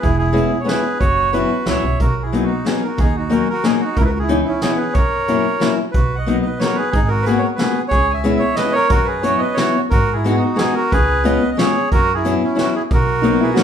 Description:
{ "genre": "musette waltz", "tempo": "182 BPM", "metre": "3/4", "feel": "rubato", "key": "B major", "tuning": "A4 = 440 Hz", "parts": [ { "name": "bandoneon", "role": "melody", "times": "0.0-13.6 s", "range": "C#4 to G#5", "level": "-19 LUFS", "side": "right 2 dB", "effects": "none" }, { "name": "upright bass", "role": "bass", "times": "0.0-13.3 s", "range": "E1 to G#2", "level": "-22 LUFS", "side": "right 1 dB", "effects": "none" }, { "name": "vintage brush drum kit", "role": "drums", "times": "0.0-13.6 s", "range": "hi-hat, kick drum, snare drum", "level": "-20 LUFS", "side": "equal", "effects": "none" }, { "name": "fingerpicked old ladder-braced acoustic guitar", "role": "accompaniment", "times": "0.3-13.6 s", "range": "E3 to F#4", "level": "-19 LUFS", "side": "left 4 dB", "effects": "none" }, { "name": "hollow-body jazz guitar", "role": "second line", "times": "13.2-13.6 s", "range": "D#4 to F#4", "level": "-19 LUFS", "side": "right 6 dB", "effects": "none" } ], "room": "moderate large studio reverb, RT60 0.8 s", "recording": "band playing live in one room", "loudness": "-15 LUFS", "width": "side -8 dB against mid", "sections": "0.0-13.6 A section", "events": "none", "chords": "0.0 C#m7/E; 1.0 F#7sus4; 2.0 Bmaj7; 3.0 D#m7; 4.0 C#m9; 4.9 F#7; 5.9 Bmaj7; 6.9 G#m9; 7.9 C#m7; 8.9 F#7sus4; 9.9 G#m7; 10.9 C#7; 11.9 F#7sus4; 12.9 Bmaj7" }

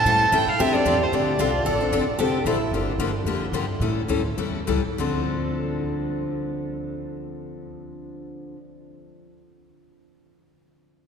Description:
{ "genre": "acoustic string swing (jazz manouche)", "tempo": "191-225 BPM", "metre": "4/4", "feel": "swing 57% on 8ths", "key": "D minor", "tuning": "A4 = 439 Hz", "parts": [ { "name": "warm violin", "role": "melody", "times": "0.0-2.5 s", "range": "C5 to A5", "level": "-23 LUFS", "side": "right 2 dB", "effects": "none" }, { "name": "picked steel-string acoustic guitar", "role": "second line", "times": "0.0-2.7 s", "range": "E4 to A4", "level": "-28 LUFS", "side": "right 2 dB", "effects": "none" }, { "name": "upright bass", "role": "bass", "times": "0.0-8.5 s", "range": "F1 to A2", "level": "-29 LUFS", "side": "equal", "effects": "none" }, { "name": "picked steel-string acoustic guitar", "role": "accompaniment", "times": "0.1-8.6 s", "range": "D3 to A4", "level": "-26 LUFS", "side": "left 4 dB", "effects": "none" } ], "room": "wet cathedral reverb, RT60 5.7 s", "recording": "recorded in a church or concert hall", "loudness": "-21 LUFS", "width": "side -6 dB against mid", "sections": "0.0-2.7 A section; 2.7-5.0 B section; 5.0-7.5 C section", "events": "slowing down 2.7-5.0", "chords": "0.0 A7; 0.6 Dm9; 2.7 Gm7; 3.8 A7; 5.0 Dm7" }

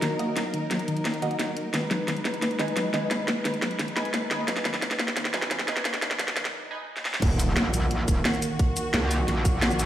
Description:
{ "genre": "dark technical drum and bass", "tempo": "175 BPM", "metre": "4/4", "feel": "straight", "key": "Eb minor", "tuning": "A4 = 440 Hz", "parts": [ { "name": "dark studio string section", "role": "sustained chords", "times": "0.0-9.9 s", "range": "Eb3 to Cb5", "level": "-31 LUFS", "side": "equal", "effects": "sidechain pumping" }, { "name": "warbly dusty pluck", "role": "arpeggios", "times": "0.0-6.5 s", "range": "Eb3 to Bb3", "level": "-34 LUFS", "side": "left 2 dB", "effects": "chorus, sidechain pumping, tape echo" }, { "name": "drum and bass drum kit", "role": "drums", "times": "0.0-9.9 s", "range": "crash cymbal, hi-hat, shaker, snare drum", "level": "-27 LUFS", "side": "equal", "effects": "overdrive, studio ambience" }, { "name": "band-passed chord stab", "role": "stabs", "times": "0.2-6.8 s", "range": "Bb3 to Ab5", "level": "-34 LUFS", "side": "right 2 dB", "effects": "chorus, phaser, tape echo" }, { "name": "riser and impact", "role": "sound effects", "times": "3.9-8.6 s", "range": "none", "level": "-35 LUFS", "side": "right 1 dB", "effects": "none" }, { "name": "metallic wobble bass", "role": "bass", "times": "7.2-9.9 s", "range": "Eb1 to Db2", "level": "-26 LUFS", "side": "equal", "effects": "distortion, chorus, overdrive" }, { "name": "electronic kick drum", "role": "drums", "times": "7.2-9.5 s", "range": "none", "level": "-23 LUFS", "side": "equal", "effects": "overdrive, studio ambience" } ], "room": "moderate lush hall reverb, RT60 2.0 s, digital ambience", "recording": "played on a big sound system in a bare room, stone room reverb, high-pass filter", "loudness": "-24 LUFS", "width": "side -12 dB against mid", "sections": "0.0-7.2 A section; 7.2-9.9 B section", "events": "build-up 0.0-7.2; drum fill 0.0-6.5, 7.0; filter sweep on synth arpeggio sound 0.0-7.2; filter sweep on synth stab 0.0-7.2; filter sweep 0.0-7.2; break 6.5-7.2; drop 7.2-9.9; impact 7.2-8.6", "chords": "0.0 Ebm; 1.7 Abm; 7.2 Ebm" }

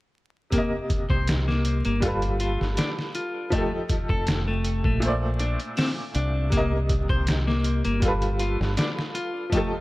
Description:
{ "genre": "trip hop", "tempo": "80 BPM", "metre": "4/4", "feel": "straight", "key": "C dorian", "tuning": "A4 = 442 Hz", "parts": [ { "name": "bright upright piano", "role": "accompaniment", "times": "0.5-9.8 s", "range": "Bb2 to Eb5", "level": "-29 LUFS", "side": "equal", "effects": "tremolo, tape echo" }, { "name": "clean electric guitar", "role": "arpeggios", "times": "0.5-9.7 s", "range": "A3 to C5", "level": "-30 LUFS", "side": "left 2 dB", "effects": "tape echo" }, { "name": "trip hop sampler-style drum kit", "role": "drums", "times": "0.5-9.7 s", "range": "hi-hat, kick drum, snare drum", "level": "-26 LUFS", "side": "equal", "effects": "overdrive" }, { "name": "deep dub fingered electric bass", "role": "bass", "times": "1.1-8.8 s", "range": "F1 to C2", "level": "-25 LUFS", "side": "equal", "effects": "none" } ], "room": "little or no reverb", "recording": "vinyl crackle", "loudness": "-22 LUFS", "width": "side -19 dB against mid", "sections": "0.5-9.8 A section", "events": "none", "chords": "0.5 Cm7; 2.0 G9; 3.5 F9; 5.0 Bbmaj9; 6.5 Cm7; 8.0 G9" }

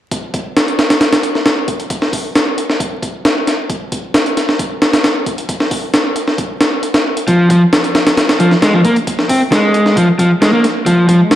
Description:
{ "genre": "breakbeat, breaks", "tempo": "134 BPM", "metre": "4/4", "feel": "straight", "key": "F minor", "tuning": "A4 = 441 Hz", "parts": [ { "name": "breakbeat sampler-style drum kit", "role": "drums", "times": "0.1-11.4 s", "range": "hi-hat, kick drum, snare drum", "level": "-13 LUFS", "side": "equal", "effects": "high-pass filter on hats, high-pass filter on kick, high-pass filter on snare, high-pass filter on room" }, { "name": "crunchy overdriven guitar", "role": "riff", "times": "7.3-11.2 s", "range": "F3 to C4", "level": "-11 LUFS", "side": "equal", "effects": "none" }, { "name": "riser", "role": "sound effects", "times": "11.1-11.4 s", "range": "none", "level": "-22 LUFS", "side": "equal", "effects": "none" } ], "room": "moderate lush hall reverb, RT60 1.8 s", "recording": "dark, warm production, vinyl crackle", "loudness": "-11 LUFS", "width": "side -12 dB against mid", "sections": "0.1-11.4 A section", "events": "riser 11.1-11.4", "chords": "none" }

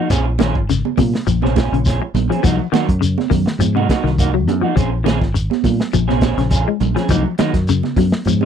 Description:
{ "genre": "afrobeat", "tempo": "103 BPM", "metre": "4/4", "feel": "swing 54% on 16ths", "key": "Bb minor", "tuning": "A4 = 438 Hz", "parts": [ { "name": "semi-hollow electric guitar", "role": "arpeggios", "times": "0.0-8.5 s", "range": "C3 to Ab3", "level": "-20 LUFS", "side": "left 12 dB", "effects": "ensemble chorus" }, { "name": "electric guitar at the edge of break-up", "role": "stabs", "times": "0.0-8.5 s", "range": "F3 to Ab4", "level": "-22 LUFS", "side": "right 6 dB", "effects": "wide subtle chorus" }, { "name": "fingered electric bass", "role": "bass", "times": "0.1-8.5 s", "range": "Ab1 to Bb2", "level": "-19 LUFS", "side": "equal", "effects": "none" }, { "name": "crunchy breakbeat drum kit", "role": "drums", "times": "0.1-8.4 s", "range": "hi-hat, kick drum, snare drum", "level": "-20 LUFS", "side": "equal", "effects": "none" }, { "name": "shekere", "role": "percussion", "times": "0.1-8.4 s", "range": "none", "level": "-23 LUFS", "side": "left 2 dB", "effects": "none" }, { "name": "congas", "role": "percussion", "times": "0.4-8.5 s", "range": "none", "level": "-21 LUFS", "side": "right 21 dB", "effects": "none" } ], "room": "little or no reverb", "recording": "dry, close 1970s-style studio recording", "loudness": "-14 LUFS", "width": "side -8 dB against mid", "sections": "0.0-8.5 A section", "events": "none", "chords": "0.1 Bbm9; 2.4 Cm7b5; 4.8 Bbm9; 7.1 Cm7b5" }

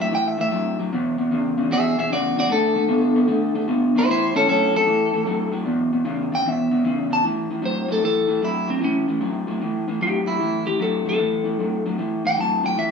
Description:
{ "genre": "blues", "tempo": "152 BPM", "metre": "4/4", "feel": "swing 67% on 8ths", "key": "A mixolydian", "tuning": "A4 = 440 Hz", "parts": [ { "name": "clean electric guitar", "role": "melody", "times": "0.0-12.9 s", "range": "C4 to A5", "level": "-21 LUFS", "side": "left 2 dB", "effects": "none" }, { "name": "electric guitar through a small old amp", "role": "riff", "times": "0.0-12.9 s", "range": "E2 to B3", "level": "-22 LUFS", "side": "equal", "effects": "spring reverb" } ], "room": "moderate stone room reverb, RT60 1.1 s", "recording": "band playing live in one room, studio reverb", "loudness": "-19 LUFS", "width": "side -5 dB against mid", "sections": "0.0-7.2 A section; 7.2-12.9 B section", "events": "clean electric guitar solo 0.0-7.2", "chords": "0.0 A5; 0.9 Eadd9; 2.5 D5; 4.1 A; 5.7 E5; 7.2 A5" }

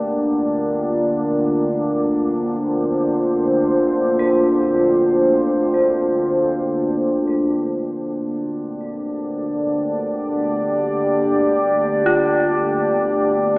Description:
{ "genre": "dark ambient drone", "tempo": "free time", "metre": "none", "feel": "none", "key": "G minor", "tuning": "A4 = 442 Hz", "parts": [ { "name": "dark analog pad", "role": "sustained chords", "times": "0.0-13.6 s", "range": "Bb3 to D5", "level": "-17 LUFS", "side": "equal", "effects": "chorus, phaser" }, { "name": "dark detuned synth bell", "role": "arpeggios", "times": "0.0-13.6 s", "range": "F4 to Bb4", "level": "-24 LUFS", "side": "equal", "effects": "chorus, tremolo, analog delay" }, { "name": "organ-like drone", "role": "drone", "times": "0.0-13.6 s", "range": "G1 to D2", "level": "-27 LUFS", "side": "equal", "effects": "ensemble chorus, built-in reverb" } ], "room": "wet lush hall reverb, RT60 2.8 s", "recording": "dreamy mix soaked in reverb, AM radio sound", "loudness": "-16 LUFS", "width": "side -24 dB against mid", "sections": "0.0-7.4 A section; 7.4-13.6 B section", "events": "fade-out on synth bell 0.0-7.4", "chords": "0.0 Gm" }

